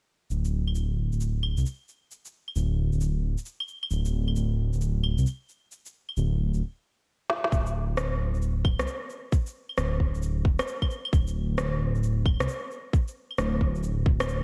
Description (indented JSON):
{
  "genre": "future garage",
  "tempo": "133 BPM",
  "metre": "4/4",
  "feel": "swing 64% on 16ths",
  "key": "unclear",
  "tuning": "A4 = 440 Hz",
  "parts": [
    { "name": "dark detuned saw bass", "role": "bass", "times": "0.3-14.4 s", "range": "D1 to C2", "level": "-28 LUFS", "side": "equal", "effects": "sidechain pumping" },
    { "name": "electronic shaker, claves, snare drum and rim click", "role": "drums", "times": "0.3-14.4 s", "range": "none", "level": "-35 LUFS", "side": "equal", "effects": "overdrive, gated reverb" },
    { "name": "electronic kick drum", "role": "drums", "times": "7.5-14.2 s", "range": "none", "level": "-26 LUFS", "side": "equal", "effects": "none" }
  ],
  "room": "light reverb",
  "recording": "bright 1980s-style digital production, cassette tape",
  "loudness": "-28 LUFS",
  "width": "mono",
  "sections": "0.3-7.5 A section; 7.5-14.4 B section",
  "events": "stop 6.6-7.5; drum fill 7.3",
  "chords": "none"
}